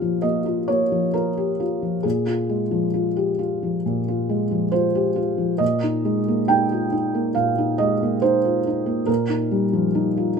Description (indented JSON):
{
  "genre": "neoclassical minimalist piano",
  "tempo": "68 BPM",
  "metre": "4/4",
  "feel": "rubato",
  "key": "unclear",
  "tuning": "A4 = 440 Hz",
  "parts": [
    { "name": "felt-muted upright piano", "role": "solo", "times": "0.0-10.4 s", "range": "Bb2 to G5", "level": "-19 LUFS", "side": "equal", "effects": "none" }
  ],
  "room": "moderate studio reverb, RT60 0.8 s",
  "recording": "minimal, uncompressed stereo recording",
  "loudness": "-19 LUFS",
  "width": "side -6 dB against mid",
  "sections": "0.0-10.4 A section",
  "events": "none",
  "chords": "0.0 Bbm; 2.0 Fmadd9/Bb; 5.6 Absus2/Bb; 9.1 Ebadd9/Bb",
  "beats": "0.24 1.15 | 2.04 2.94 3.85 4.73 | 5.61 6.50 7.37 8.24 | 9.09 9.95"
}